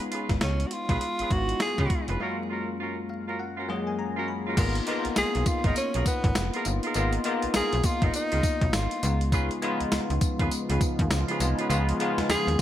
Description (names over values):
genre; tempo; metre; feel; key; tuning
R&B, new jack swing; 101 BPM; 4/4; swing 61% on 16ths; G# dorian; A4 = 438 Hz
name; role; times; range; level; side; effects
bell-like tine electric piano; accompaniment; 0.0-12.6 s; F#2 to B5; -30 LUFS; left 3 dB; analog chorus
clean 12-bit digital drum machine; drums; 0.0-12.6 s; crash cymbal, hi-hat, kick drum, snare drum, tambourine; -28 LUFS; equal; none
dark horn section; stabs; 0.1-12.5 s; B3 to B4; -33 LUFS; right 2 dB; none
slap-like FM bass; bass; 0.3-12.6 s; E#1 to C#3; -28 LUFS; equal; none
breathy tenor saxophone; melody; 0.4-12.6 s; B3 to G#4; -29 LUFS; equal; none
sweeping resonant pad; sustained chords; 9.3-12.6 s; C#3 to E#4; -34 LUFS; right 2 dB; chorus
room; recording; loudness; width
light reverb; bright 1980s-style digital production, vinyl crackle; -24 LUFS; side -12 dB against mid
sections
0.0-4.6 A section; 4.6-12.6 B section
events
break 2.2-4.6; tine electric piano fill 2.8-4.6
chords
0.0 C#7; 2.2 F#maj7; 4.6 G#m69; 9.0 C#7